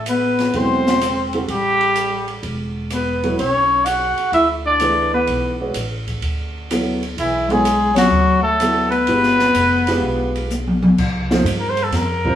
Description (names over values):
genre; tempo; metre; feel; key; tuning
modal jazz; 126 BPM; 4/4; swing 68% on 8ths; unclear; A4 = 442 Hz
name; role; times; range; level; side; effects
warm trumpet; melody; 0.0-12.4 s; E4 to F#5; -18 LUFS; equal; none
warm bass clarinet; second line; 0.0-10.4 s; E3 to F#4; -21 LUFS; left 3 dB; none
upright bass; bass; 0.0-12.4 s; E1 to G2; -25 LUFS; equal; none
open jazz drum kit; drums; 0.1-12.3 s; crash cymbal, hi-hat, kick drum, ride cymbal, rim click, snare drum, toms; -24 LUFS; equal; none
warm grand piano; accompaniment; 0.5-12.4 s; D3 to D5; -22 LUFS; right 2 dB; none
room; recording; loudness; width
moderate stone room reverb, RT60 1.3 s; band playing live in one room, small room ambience; -15 LUFS; side -10 dB against mid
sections
0.0-11.0 A section; 11.0-12.4 B section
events
band accent 7.9; drum fill 10.5-11.0; trumpet solo 11.0-12.4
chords
0.0 Am9; 3.4 Bm11; 9.1 G7b9; 11.0 C7sus4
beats
0.06 0.54 1.01 | 1.48 1.96 2.43 2.91 | 3.38 3.85 4.33 4.81 | 5.28 5.76 6.23 6.71 | 7.18 7.66 8.13 8.61 | 9.08 9.56 10.03 10.51 | 10.98 11.46 11.93